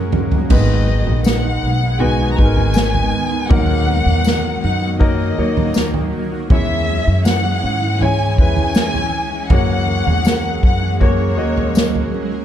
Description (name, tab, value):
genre	pop ballad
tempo	80 BPM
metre	4/4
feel	straight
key	G# minor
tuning	A4 = 439 Hz
part	clear concert grand piano	accompaniment	0.0-12.4 s	G#2 to D#5	-23 LUFS	left 3 dB	none
part	shimmering ambient pad	sustained chords	0.0-12.4 s	D#3 to C#4	-26 LUFS	equal	chorus, built-in reverb, phaser
part	fingerpicked steel-string acoustic guitar	arpeggios	0.0-12.4 s	G#2 to B4	-26 LUFS	right 6 dB	ping-pong delay
part	upright bass	bass	0.0-12.1 s	G#1 to G#2	-18 LUFS	equal	none
part	unplugged drum kit	drums	0.1-12.1 s	crash cymbal, kick drum, snare drum, toms	-17 LUFS	equal	none
part	warm studio violin section	melody	0.5-12.1 s	C#5 to A#5	-22 LUFS	left 2 dB	none
part	tambourine	percussion	1.2-11.9 s	none	-34 LUFS	left 10 dB	none
room	little or no reverb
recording	dark, warm production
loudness	-14 LUFS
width	side -10 dB against mid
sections	0.5-12.4 A section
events	drum fill 0.0-0.5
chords	0.0 F#add9; 0.5 G#m; 3.5 D#m; 6.5 C#m/E; 9.5 F#add9